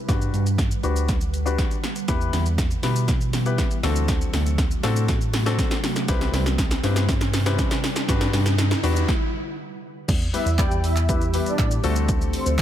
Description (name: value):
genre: dance-pop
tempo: 120 BPM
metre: 4/4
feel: straight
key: E minor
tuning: A4 = 440 Hz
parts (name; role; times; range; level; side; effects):
- ethereal airy pad; sustained chords; 0.0-12.6 s; B2 to F#5; -32 LUFS; equal; ensemble chorus, built-in reverb, sidechain pumping, low-pass filter
- warm concert grand piano; accompaniment; 0.1-12.6 s; G3 to D5; -29 LUFS; left 7 dB; sidechain pumping, low-pass filter
- bell-like tine electric piano; bass; 0.1-12.6 s; C2 to B2; -23 LUFS; equal; sidechain pumping
- punchy analog drum machine; drums; 0.1-12.6 s; crash cymbal, handclaps, hi-hat, kick drum, shaker, snare drum; -23 LUFS; equal; none
- riser; sound effects; 4.7-9.1 s; none; -34 LUFS; right 1 dB; none
- filtered supersaw swell; melody; 10.3-12.6 s; C4 to G5; -28 LUFS; right 1 dB; sidechain pumping, digital delay
room: little or no reverb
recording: none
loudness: -20 LUFS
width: side -11 dB against mid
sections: 0.0-10.1 A section; 10.1-12.6 B section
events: build-up 0.0-10.1; drum fill 0.0-9.1; filter sweep 0.0-10.1; riser 4.7-10.1; stop 9.1-10.1; drop 10.1-12.6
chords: 0.1 Gmaj7; 2.1 Em; 3.8 D7; 6.1 Cmaj7; 8.1 Gmaj7; 9.1 N.C.; 10.1 Em; 11.8 D7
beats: | 0.09 0.59 1.09 1.59 | 2.09 2.59 3.09 3.59 | 4.09 4.59 5.09 5.59 | 6.09 6.59 7.09 7.59 | 8.09 8.59 9.09 9.59 | 10.09 10.59 11.09 11.59 | 12.09 12.59